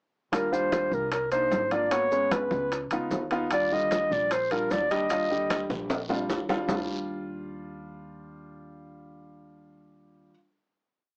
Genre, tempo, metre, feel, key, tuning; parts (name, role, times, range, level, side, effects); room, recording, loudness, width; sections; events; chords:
Afro-Cuban jazz; 151 BPM; 4/4; straight; Eb major; A4 = 440 Hz
breathy clarinet; melody; 0.3-5.7 s; Bb4 to Eb5; -28 LUFS; equal
warm grand piano; accompaniment; 0.3-10.3 s; D3 to G4; -34 LUFS; equal
upright bass; bass; 0.3-10.3 s; Ab1 to Eb2; -43 LUFS; equal
bongos; percussion; 0.3-6.8 s; -41 LUFS; equal
congas; percussion; 0.3-6.8 s; -39 LUFS; equal
maracas; percussion; 0.3-6.8 s; -50 LUFS; equal
timbales; percussion; 0.3-6.8 s; -35 LUFS; equal
guiro; percussion; 3.5-6.8 s; -46 LUFS; equal
light reverb; cassette tape, small speaker sound; -27 LUFS; mono
0.3-6.7 A section; 6.7-9.8 final chord
drum fill 5.9-6.7
0.3 Ebmaj9; 1.1 Cm9; 1.9 Abm7; 2.7 Db9; 3.5 Ebmaj9